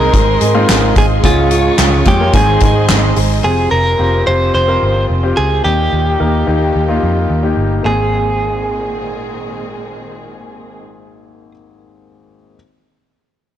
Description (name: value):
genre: piano-driven pop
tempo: 109 BPM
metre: 4/4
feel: straight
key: Ab major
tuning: A4 = 441 Hz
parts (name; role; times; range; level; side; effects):
- direct-recorded clean electric guitar; melody; 0.0-11.5 s; F4 to C5; -16 LUFS; right 2 dB; harmonic tremolo
- warm baby grand piano; accompaniment; 0.0-12.6 s; Ab1 to Bb4; -18 LUFS; left 4 dB; none
- warm symphonic string section; sustained chords; 0.0-10.8 s; Bb2 to Db6; -25 LUFS; left 2 dB; none
- fingerpicked steel-string acoustic guitar; riff; 0.0-3.4 s; Ab2 to Ab4; -20 LUFS; right 9 dB; none
- vintage muted picked electric bass; bass; 0.0-11.5 s; F1 to Ab2; -16 LUFS; equal; transformer saturation
- soft-mallet drum kit; drums; 0.1-3.3 s; handclaps, hi-hat, kick drum, snare drum; -15 LUFS; equal; none
room: light reverb, small room ambience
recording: blown-out, overdriven recording, overdrive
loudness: -11 LUFS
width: side -10 dB against mid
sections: 0.0-3.4 A section; 3.4-7.8 B section; 7.8-10.0 C section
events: none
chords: 0.0 Ab; 1.2 Db; 2.3 Ab; 3.4 Fm; 5.6 Eb; 7.8 Abadd9